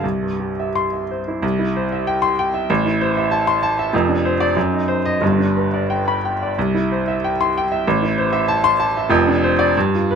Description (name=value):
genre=classical, romantic character piece for solo piano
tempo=82-99 BPM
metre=2/4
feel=rubato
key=C major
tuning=A4 = 436 Hz
part: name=clear grand piano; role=solo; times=0.0-10.2 s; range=F1 to C6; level=-16 LUFS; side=equal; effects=none
room=little or no reverb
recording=close, detailed microphones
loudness=-16 LUFS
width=side -6 dB against mid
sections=0.0-1.4 A section; 1.4-10.2 A section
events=none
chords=0.0 C; 2.7 Am; 3.9 Dm7/F; 4.6 Cdim/Gb; 5.2 G; 6.6 C; 7.8 Am; 9.1 Dm7/F